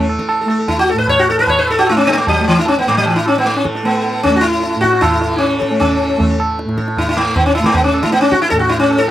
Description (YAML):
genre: indian classical, Hindustani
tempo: 153 BPM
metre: 4/4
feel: straight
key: A raga bhupali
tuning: A4 = 439 Hz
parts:
  - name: sitar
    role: melody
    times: 0.0-9.1 s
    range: E3 to C#5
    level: -13 LUFS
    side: equal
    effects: none
  - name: tanpura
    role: drone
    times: 0.0-9.1 s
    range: A2 to A3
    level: -20 LUFS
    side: right 1 dB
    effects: none
  - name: tabla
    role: percussion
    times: 0.1-9.0 s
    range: none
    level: -20 LUFS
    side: right 1 dB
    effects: none
room: little or no reverb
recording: recorded outdoors, with no room sound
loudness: -12 LUFS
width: side -13 dB against mid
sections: 0.0-9.1 A section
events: speeding up 0.0-9.1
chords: none